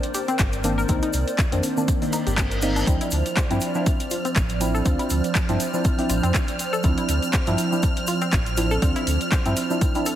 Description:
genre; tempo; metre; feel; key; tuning
deep house; 121 BPM; 4/4; swing 56% on 16ths; D minor; A4 = 439 Hz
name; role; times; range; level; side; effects
hollow soft pad; sustained chords; 0.0-10.2 s; F3 to D5; -30 LUFS; right 3 dB; ensemble chorus, sidechain pumping
deep house drum kit; drums; 0.0-10.2 s; handclaps, hi-hat; -29 LUFS; equal; overdrive
tube shaker; percussion; 0.0-10.2 s; none; -36 LUFS; right 2 dB; none
analog pluck; arpeggios; 0.1-10.1 s; C4 to C5; -31 LUFS; left 3 dB; chorus, sidechain pumping, tape echo
sub bass with octave; bass; 0.4-9.5 s; G1 to G2; -24 LUFS; equal; sidechain pumping
electronic kick drum; drums; 0.4-9.9 s; none; -23 LUFS; equal; overdrive
deep mellow chord stab; stabs; 0.6-10.2 s; Eb3 to F4; -26 LUFS; equal; chorus, cassette tape, tape echo
reverse cymbal; sound effects; 2.1-2.9 s; none; -33 LUFS; right 1 dB; none
string machine, violins; texture; 2.9-10.2 s; F6; -32 LUFS; equal; ensemble chorus, sidechain pumping
room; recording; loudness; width
light reverb, digital ambience; heavily compressed radio sound; -20 LUFS; side -11 dB against mid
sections
0.0-10.2 A section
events
reverse cymbal 2.1-2.9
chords
0.0 Cm9; 2.9 Dm9

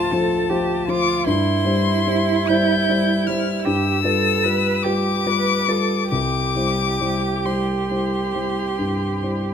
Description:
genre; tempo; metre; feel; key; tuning
classical, slow romantic movement for piano trio; 45-53 BPM (dotted quarters); 12/8; rubato; C major; A4 = 441 Hz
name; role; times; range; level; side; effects
warm violin; melody; 0.0-9.5 s; A5 to G6; -24 LUFS; left 9 dB; none
rich cello; second line; 0.0-9.5 s; E4 to B4; -24 LUFS; right 8 dB; none
dark concert grand piano; accompaniment; 0.0-9.5 s; C2 to C5; -21 LUFS; left 2 dB; none
room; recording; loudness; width
moderate recital hall reverb, RT60 1.5 s; close, detailed microphones; -18 LUFS; side -8 dB against mid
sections
0.0-9.5 A section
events
none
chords
0.0 Dm7; 1.3 C/G; 3.7 G7; 6.1 C

